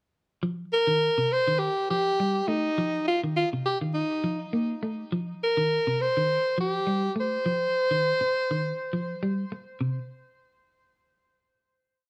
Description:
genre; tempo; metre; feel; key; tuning
afrobeat; 102 BPM; 4/4; swing 54% on 16ths; C dorian; A4 = 439 Hz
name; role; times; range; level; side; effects
clean electric guitar; arpeggios; 0.4-10.0 s; C3 to Bb3; -32 LUFS; equal; none
bright alto saxophone; melody; 0.7-9.2 s; Eb4 to C5; -27 LUFS; equal; tape echo
room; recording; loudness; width
moderate studio reverb, RT60 0.5 s; none; -27 LUFS; mono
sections
0.4-9.8 groove; 9.8-12.1 final note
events
none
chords
0.4 Cm; 9.8 N.C.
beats
| 0.43 1.01 1.60 2.18 | 2.77 3.35 3.94 4.52 | 5.11 5.70 6.28 6.87 | 7.46 8.04 8.63 9.22 | 9.80

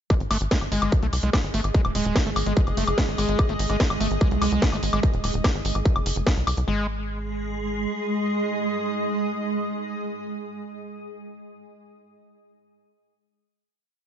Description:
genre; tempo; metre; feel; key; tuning
psychedelic trance; 146 BPM; 4/4; straight; unclear; A4 = 440 Hz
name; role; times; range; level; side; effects
screaming distorted acid line; riff; 0.1-6.9 s; G#3 to A3; -30 LUFS; equal; distortion, chorus, auto-pan, sidechain pumping, dub echo
electronic kick drum; drums; 0.1-6.3 s; none; -22 LUFS; equal; distortion
techno drum kit; drums; 0.1-6.7 s; hi-hat, snare drum, woodblock; -28 LUFS; left 1 dB; none
granular cloud pad; texture; 1.3-9.9 s; G#3 to D#6; -31 LUFS; right 2 dB; built-in reverb, sidechain pumping
tight sequencer bass; bass; 0.2-7.9 s; D#1 to B#1; -26 LUFS; equal; tube saturation
swarming drone; sustained chords; 4.1-9.7 s; G#3 to G#4; -30 LUFS; right 1 dB; built-in reverb, sidechain pumping
room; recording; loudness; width
light reverb, digital ambience; nothing above 7.6 kHz; -21 LUFS; side -9 dB against mid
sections
0.1-6.7 groove; 6.7-10.0 final chord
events
none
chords
0.1 G#5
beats
| 0.10 0.51 0.92 1.33 | 1.75 2.16 2.57 2.98 | 3.39 3.80 4.21 4.62 | 5.03 5.44 5.86 6.27 | 6.68 7.09 7.50 7.91 | 8.32 8.73 9.14 9.55

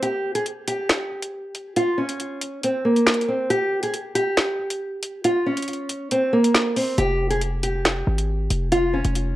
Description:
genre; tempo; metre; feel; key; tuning
hip hop, drill; 138 BPM; 4/4; half-time; F minor; A4 = 441 Hz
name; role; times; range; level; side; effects
nylon-string guitar; melody; 0.0-9.4 s; Bb3 to Ab4; -22 LUFS; equal; none
drill drum kit; drums; 0.0-9.3 s; finger snaps, hi-hat, snare drum; -23 LUFS; equal; none
hard-hitting 808-style bass; bass; 7.0-9.4 s; F1 to Ab1; -23 LUFS; equal; none
room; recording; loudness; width
light reverb, digital ambience; worn, warbling old tape, cassette tape, warbly pitch drift; -20 LUFS; side -15 dB against mid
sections
0.0-9.4 A section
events
break 0.0-7.0; kick muted 6.1-7.0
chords
0.0 N.C.; 7.0 Fmadd9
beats
| 0.03 0.46 0.90 1.33 | 1.76 2.20 2.63 3.07 | 3.50 3.94 4.37 4.81 | 5.24 5.68 6.11 6.55 | 6.98 7.42 7.85 8.29 | 8.72 9.16

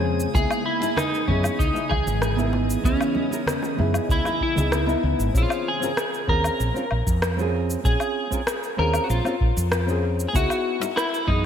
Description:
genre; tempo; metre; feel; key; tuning
sunset chillout; 96 BPM; 4/4; straight; unclear; A4 = 440 Hz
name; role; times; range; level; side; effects
nylon-string guitar; accompaniment; 0.0-11.5 s; Fb3 to Bb4; -28 LUFS; moving between left 6 dB and right 6 dB; auto-pan
ethereal airy pad; sustained chords; 0.0-5.3 s; Db3 to Eb5; -33 LUFS; equal; ensemble chorus, built-in reverb, phaser
woody fretless electric bass; bass; 0.0-11.5 s; Ab1 to Gb2; -24 LUFS; equal; lush chorus
drifting glass-harmonics texture; texture; 0.0-5.4 s; Ab4 to Ab5; -38 LUFS; left 1 dB; chorus, built-in reverb
electronic shaker, woodblock and rim click; drums; 0.2-11.3 s; none; -29 LUFS; left 1 dB; gated reverb
clean electric guitar; melody; 0.3-11.5 s; Db4 to Bb4; -26 LUFS; equal; analog chorus, ping-pong delay
electronic kick drum; drums; 0.3-11.4 s; none; -24 LUFS; equal; overdrive
bongos and congas; percussion; 0.3-4.8 s; none; -32 LUFS; right 3 dB; none
room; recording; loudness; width
moderate lush hall reverb, RT60 2.6 s; bright 1980s-style digital production; -20 LUFS; side -8 dB against mid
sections
0.0-5.3 A section; 5.3-11.5 A section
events
none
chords
0.3 Dbm9; 5.3 Bbm9; 10.3 Dbm9 (rootless)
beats
| 0.34 0.97 1.59 2.22 | 2.85 3.47 4.09 4.72 | 5.34 5.97 6.59 7.22 | 7.84 8.47 9.10 9.72 | 10.35 10.97

